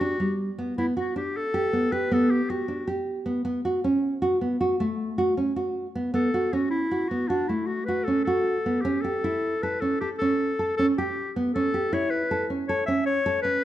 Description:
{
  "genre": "contemporary instrumental, contemporary",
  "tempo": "157 BPM",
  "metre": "7/4",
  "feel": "straight",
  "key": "unclear",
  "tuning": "A4 = 439 Hz",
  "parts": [
    { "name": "clear clarinet", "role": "melody", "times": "0.0-13.6 s", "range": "D4 to E5", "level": "-27 LUFS", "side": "left 2 dB", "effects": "none" },
    { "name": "nylon-string guitar", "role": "arpeggios", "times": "0.0-13.6 s", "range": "G3 to A4", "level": "-25 LUFS", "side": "right 1 dB", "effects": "none" }
  ],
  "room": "moderate recital hall reverb, RT60 1.4 s",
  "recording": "close, detailed microphones",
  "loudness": "-23 LUFS",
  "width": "side -13 dB against mid",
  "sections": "0.0-13.6 A section",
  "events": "none",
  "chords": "0.0 Gmaj9; 3.5 B7sus2; 8.9 A7",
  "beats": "0.02 0.40 | 0.79 1.17 1.55 1.93 2.31 2.70 3.08 | 3.46 3.84 4.23 4.61 4.99 5.38 5.76 | 6.14 6.53 6.92 7.30 7.69 8.08 8.47 | 8.86 9.25 9.63 10.02 10.40 10.78 11.17 | 11.55 11.93 12.31 12.69 13.07 13.45"
}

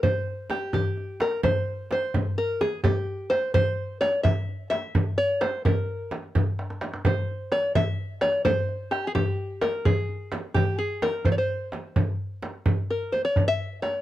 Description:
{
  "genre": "Persian modal ensemble",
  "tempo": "86 BPM (dotted quarters)",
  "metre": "6/8",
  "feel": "straight",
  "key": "C dastgah homayun",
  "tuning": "A4 = 440 Hz",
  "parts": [
    { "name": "open-back banjo", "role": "melody", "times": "0.0-14.0 s", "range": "G4 to E5", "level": "-26 LUFS", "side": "left 1 dB", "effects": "none" },
    { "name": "frame drum", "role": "percussion", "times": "0.0-13.9 s", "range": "none", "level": "-29 LUFS", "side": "right 2 dB", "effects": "none" },
    { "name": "tombak", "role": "percussion", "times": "0.0-13.9 s", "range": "none", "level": "-27 LUFS", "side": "equal", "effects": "none" }
  ],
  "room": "light reverb",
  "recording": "none",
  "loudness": "-23 LUFS",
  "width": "side -14 dB against mid",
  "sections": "0.0-1.4 A section; 1.4-12.7 B section; 12.7-14.0 C section",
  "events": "drum fill 6.6-7.0",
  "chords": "none",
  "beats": "| 0.02 0.73 | 1.43 2.13 | 2.83 3.54 | 4.24 4.94 | 5.64 6.34 | 7.05 7.75 | 8.45 9.15 | 9.85 10.55 | 11.26 11.96 | 12.66 13.36"
}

